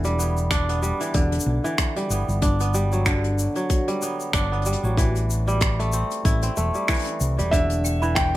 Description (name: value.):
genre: folktronica.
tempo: 94 BPM.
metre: 4/4.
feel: swing 56% on 16ths.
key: E minor.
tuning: A4 = 439 Hz.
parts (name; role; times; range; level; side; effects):
kora; arpeggios; 0.0-8.4 s; D3 to E4; -25 LUFS; right 1 dB; digital delay.
fingered electric bass; bass; 0.0-8.4 s; E1 to C2; -23 LUFS; equal; none.
soft brush drum kit; drums; 0.0-8.4 s; finger snaps, hi-hat, shaker; -28 LUFS; left 1 dB; none.
electronic kick drum; drums; 0.5-8.3 s; none; -23 LUFS; equal; none.
felt-muted upright piano; melody; 7.5-8.4 s; E5 to G5; -24 LUFS; equal; digital delay.
toy piano; second line; 7.8-8.3 s; E5 to B5; -30 LUFS; right 6 dB; digital delay.
room: light reverb.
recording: none.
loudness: -20 LUFS.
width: side -15 dB against mid.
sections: 0.0-8.4 A section.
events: none.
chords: 0.0 Em7; 2.4 Gmaj7; 5.0 Am7; 7.5 Em7.